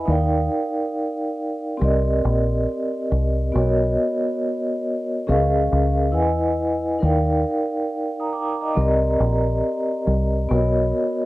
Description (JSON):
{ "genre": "lo-fi hip hop", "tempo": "69 BPM", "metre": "4/4", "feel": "swing 66% on 16ths", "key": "Eb major", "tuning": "A4 = 440 Hz", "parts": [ { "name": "vibraphone with soft mallets", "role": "accompaniment", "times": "0.0-11.3 s", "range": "B3 to Eb6", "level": "-21 LUFS", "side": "equal", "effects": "cassette tape, low-pass filter" }, { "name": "deep dub fingered electric bass", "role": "bass", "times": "0.0-10.9 s", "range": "Bb1 to E2", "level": "-21 LUFS", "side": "equal", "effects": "none" } ], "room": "moderate small room reverb, RT60 0.5 s", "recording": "home recording on cassette", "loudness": "-19 LUFS", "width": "side -18 dB against mid", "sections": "0.0-11.3 A section", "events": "none", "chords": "0.1 Ebmaj7; 1.8 Cm7; 3.5 Bmaj7; 5.3 Db6; 6.2 Emaj7; 7.0 Ebmaj7; 8.8 Cm7; 10.5 Bmaj7" }